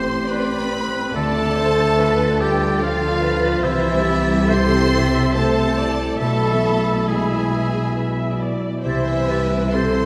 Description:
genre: cinematic.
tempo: 70 BPM.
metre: 3/4.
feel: uneven beats, rubato.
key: A minor.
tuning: A4 = 439 Hz.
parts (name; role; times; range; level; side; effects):
rich studio violin section; melody; 0.0-10.1 s; E5 to C6; -30 LUFS; equal; none.
hollow flute section; second line; 0.0-9.8 s; B5 to A6; -33 LUFS; equal; none.
mellow clarinet; second line; 0.0-9.9 s; E4 to G4; -34 LUFS; equal; none.
rich studio violin section; second line; 0.0-10.1 s; E4 to C5; -32 LUFS; equal; none.
warm oboe; second line; 0.0-10.1 s; E4 to C5; -29 LUFS; equal; none.
warm studio viola section; accompaniment; 0.0-10.1 s; C4 to E5; -28 LUFS; equal; none.
dark French horn section; sustained chords; 0.0-10.1 s; E3 to C4; -26 LUFS; equal; none.
concert harp; arpeggios; 0.0-10.1 s; A2 to D5; -28 LUFS; equal; none.
dark studio cello section; bass; 0.0-10.1 s; A2 to D3; -28 LUFS; equal; none.
warm studio double bass section; bass; 0.0-10.1 s; A1 to D2; -28 LUFS; equal; none.
room: wet concert hall reverb, RT60 2.5 s.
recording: none.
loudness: -19 LUFS.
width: mono.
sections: 0.0-10.1 A section.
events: none.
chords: 0.0 Am7; 1.2 Dm; 3.6 Am7/C; 6.2 E/B; 8.8 Am7/C.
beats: 0.30 | 1.16 2.00 2.83 | 3.65 4.51 5.36 | 6.21 7.08 7.96 | 8.85 9.74.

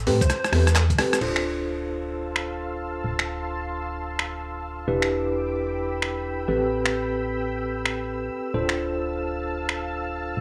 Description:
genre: UK garage, two-step garage.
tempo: 131 BPM.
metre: 4/4.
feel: swing 64% on 16ths.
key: D dorian.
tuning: A4 = 440 Hz.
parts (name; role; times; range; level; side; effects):
organ-like FM bass; bass; 0.0-10.4 s; D1 to A2; -31 LUFS; equal; none.
tine electric piano; stabs; 0.1-10.4 s; C4 to C5; -30 LUFS; equal; medium tremolo, low-pass filter, tape echo.
boom bap sampler-style drum kit; drums; 0.1-9.8 s; cabasa, crash cymbal, finger snaps, handclaps, hi-hat, rim click; -28 LUFS; equal; none.
plucky unison lead; melody; 0.2-0.8 s; C5; -33 LUFS; equal; tape echo.
electronic kick drum; drums; 0.2-1.0 s; none; -25 LUFS; equal; none.
soft string machine; sustained chords; 1.8-10.4 s; F5 to E6; -36 LUFS; equal; ensemble chorus, sidechain pumping.
room: light reverb.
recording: small room ambience.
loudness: -26 LUFS.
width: mono.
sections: 0.0-1.2 A section; 1.2-10.4 B section.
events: drum fill 0.3-1.2; filter sweep on string machine 1.2-10.4.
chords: 0.0 Am9; 1.2 Dm7; 4.9 Em7; 6.5 Am9; 8.5 Dm7.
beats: 0.30 0.76 | 1.21 1.67 2.13 2.59 | 3.04 3.50 3.96 4.42 | 4.88 5.33 5.79 6.25 | 6.71 7.17 7.62 8.08 | 8.54 9.00 9.46 9.91 | 10.37.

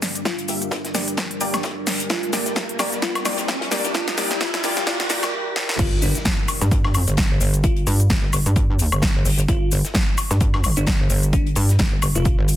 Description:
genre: bass house.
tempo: 130 BPM.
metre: 4/4.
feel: swing 57% on 16ths.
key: G dorian.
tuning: A4 = 440 Hz.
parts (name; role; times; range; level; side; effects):
deep dark ambient pad; sustained chords; 0.0-12.6 s; G3 to Bb4; -32 LUFS; right 1 dB; chorus, built-in reverb, sidechain pumping.
big-room dance drum kit; drums; 0.0-12.6 s; crash cymbal, hi-hat, shaker, snare drum, woodblock; -23 LUFS; left 1 dB; overdrive, high-pass filter on hats, high-pass filter on snare, high-pass filter on toms, high-pass filter on perc, high-pass filter on cymbals.
modern studio drum kit; drums; 0.0-12.6 s; hi-hat, snare drum; -33 LUFS; left 2 dB; sidechain pumping on hats, high-pass filter on hats, high-pass filter on snare, high-pass filter on room.
riser and impact; sound effects; 0.4-7.6 s; none; -31 LUFS; equal; none.
bell-like FM electric piano; melody; 0.3-12.6 s; D4 to F4; -30 LUFS; equal; chorus, dub echo.
electronic kick drum; drums; 0.3-12.4 s; none; -22 LUFS; equal; high-pass filter on kick.
orchestra-hit-like synth stab; stabs; 0.5-5.2 s; Bb3 to E5; -28 LUFS; left 2 dB; built-in reverb, sidechain pumping, dub echo.
metallic wobble bass; bass; 5.8-12.6 s; F1 to G2; -19 LUFS; equal; distortion, chorus, tube saturation, sidechain pumping.
room: light reverb, digital ambience.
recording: dense, heavily limited modern master, high-pass filter.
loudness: -18 LUFS.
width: side -12 dB against mid.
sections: 0.0-5.8 A section; 5.8-12.6 B section.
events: build-up 0.0-5.8; drum fill 0.0-5.3, 5.6; filter sweep on synth stab 0.0-5.8; riser 0.4-5.3; break 5.3-5.8; drop 5.8-12.6; impact 5.8-7.6.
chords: 0.0 Gm.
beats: | 0.25 0.71 1.18 1.64 | 2.10 2.56 3.02 3.48 | 3.95 4.41 4.87 5.33 | 5.79 6.25 6.71 7.18 | 7.64 8.10 8.56 9.02 | 9.48 9.95 10.41 10.87 | 11.33 11.79 12.25.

